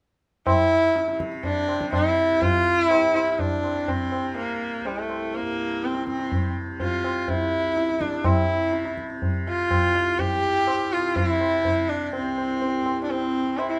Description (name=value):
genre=indian classical, Hindustani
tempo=124 BPM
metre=4/4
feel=straight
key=C raga khamaj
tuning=A4 = 442 Hz
part: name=clear sarangi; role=melody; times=0.5-13.8 s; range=A3-20c to G4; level=-25 LUFS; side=equal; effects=none
part: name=tanpura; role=drone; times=0.5-13.8 s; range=C2 to C3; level=-34 LUFS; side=equal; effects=none
part: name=tabla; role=percussion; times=0.5-13.8 s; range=none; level=-30 LUFS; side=equal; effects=none
room=moderate studio reverb, RT60 0.7 s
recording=none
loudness=-24 LUFS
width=mono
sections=0.5-13.8 A section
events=none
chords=none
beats=| 0.46 0.95 1.44 1.93 | 2.41 2.90 3.39 3.88 | 4.36 4.85 5.34 5.82 | 6.31 6.80 7.28 7.77 | 8.25 8.74 9.22 9.71 | 10.19 10.68 11.16 11.65 | 12.13 12.62 13.10 13.58